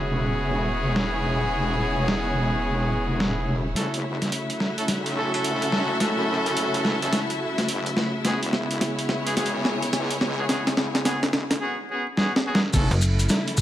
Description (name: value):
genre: glitch hop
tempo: 107 BPM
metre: 4/4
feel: swing 63% on 16ths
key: F# minor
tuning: A4 = 438 Hz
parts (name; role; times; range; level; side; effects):
- dark studio string section; sustained chords; 0.0-13.6 s; C#3 to E4; -30 LUFS; equal; sidechain pumping
- brilliant horn section; stabs; 0.0-12.9 s; B3 to A4; -28 LUFS; equal; sidechain pumping, low-pass filter, dub echo
- wobble bass; bass; 0.0-12.9 s; E1 to F#2; -29 LUFS; equal; chorus, high-pass filter
- clear studio string section; texture; 0.0-11.6 s; E4 to A5; -31 LUFS; left 1 dB; sidechain pumping
- boom bap sampler-style drum kit; drums; 1.0-13.6 s; crash cymbal, hi-hat, snare drum; -25 LUFS; equal; low-pass filter on hats, small room ambience, low-pass filter on snare, low-pass filter on cymbals
- electronic kick drum; drums; 12.7-13.6 s; none; -22 LUFS; equal; small room ambience
- maracas; percussion; 12.7-13.6 s; none; -31 LUFS; left 3 dB; none
- slap-like FM bass; bass; 12.9-13.3 s; F#1; -20 LUFS; equal; none
room: moderate lush hall reverb, RT60 1.9 s, small room ambience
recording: vinyl crackle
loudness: -22 LUFS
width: side -12 dB against mid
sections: 0.0-3.8 A section; 3.8-12.7 B section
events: build-up 3.8-12.7; drum fill 3.8-11.6, 12.2-12.7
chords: 0.0 E6; 3.8 F#m7; 8.2 E6; 12.7 F#m7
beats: 0.40 0.96 | 1.52 2.08 2.64 3.20 | 3.76 4.32 4.88 5.44 | 6.00 6.57 7.13 7.69 | 8.25 8.81 9.37 9.93 | 10.49 11.05 11.61 12.17 | 12.73 13.29